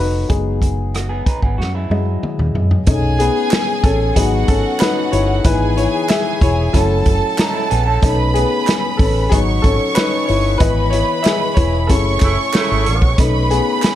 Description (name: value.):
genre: lush 1970s-style soul.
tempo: 93 BPM.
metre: 4/4.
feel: straight.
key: unclear.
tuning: A4 = 440 Hz.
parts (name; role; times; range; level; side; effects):
warm baby grand piano; accompaniment; 0.0-13.9 s; E3 to E5; -19 LUFS; left 4 dB; none.
vintage muted fingered electric bass; bass; 0.0-13.6 s; E1 to F#2; -18 LUFS; equal; none.
vintage drum kit; drums; 0.3-13.9 s; hi-hat, kick drum, rim click, snare drum, toms; -17 LUFS; equal; none.
electric guitar through a small old amp; riff; 0.9-2.7, 7.4-8.2 s; F#3 to B4; -25 LUFS; right 4 dB; wide subtle chorus.
dark studio violin section; second line; 2.9-13.9 s; F#4 to C#6; -20 LUFS; right 2 dB; tape echo.
group handclap; percussion; 3.5-13.9 s; none; -29 LUFS; right 5 dB; none.
warm horn section; stabs; 12.2-13.1 s; C#3 to E4; -22 LUFS; right 4 dB; none.
room: little or no reverb.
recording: none.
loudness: -13 LUFS.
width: side -12 dB against mid.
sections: 0.0-2.9 A section; 2.9-13.9 B section.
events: grand piano solo 0.0-2.9, 2.9-13.9; drum fill 1.6-2.9; band accent 10.6-13.2.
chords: 0.3 Emaj9/F#; 2.9 B7; 4.2 G#m7; 5.5 E6; 6.7 F#m7; 8.0 B7; 9.3 G#m7; 10.6 Emaj7; 11.9 F#m7; 13.2 B7.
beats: | 0.30 0.94 1.59 2.23 | 2.88 3.52 4.16 4.81 | 5.45 6.09 6.74 7.38 | 8.03 8.67 9.31 9.96 | 10.60 11.25 11.89 12.54 | 13.18 13.82.